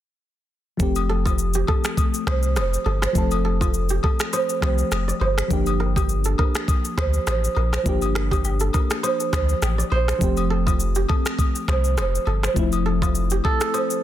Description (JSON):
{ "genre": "afrobeats", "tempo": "102 BPM", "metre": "4/4", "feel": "swing 55% on 16ths", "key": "F major", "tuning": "A4 = 440 Hz", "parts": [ { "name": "mellow FM electric piano", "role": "accompaniment", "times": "0.8-14.0 s", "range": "F3 to A4", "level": "-27 LUFS", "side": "left 3 dB", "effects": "chorus, phaser" }, { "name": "punchy sub bass", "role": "bass", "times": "0.8-13.4 s", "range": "F1 to D2", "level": "-22 LUFS", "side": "equal", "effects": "none" }, { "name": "afro-pop drum kit", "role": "drums", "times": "0.8-14.0 s", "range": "finger snaps, kick drum, rim click, shaker", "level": "-24 LUFS", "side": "equal", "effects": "soft clipping on snare" }, { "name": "agogo bells and woodblock", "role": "percussion", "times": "1.0-13.9 s", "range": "none", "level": "-31 LUFS", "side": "left 8 dB", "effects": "none" }, { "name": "kora", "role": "riff", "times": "1.1-14.0 s", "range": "F4 to D5", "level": "-26 LUFS", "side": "right 6 dB", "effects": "digital delay" } ], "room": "little or no reverb", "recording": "dense, heavily limited modern master", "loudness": "-19 LUFS", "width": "side -12 dB against mid", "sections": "0.8-14.0 A section", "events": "none", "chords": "0.8 Fadd9; 5.5 Gm7; 10.2 Fadd9" }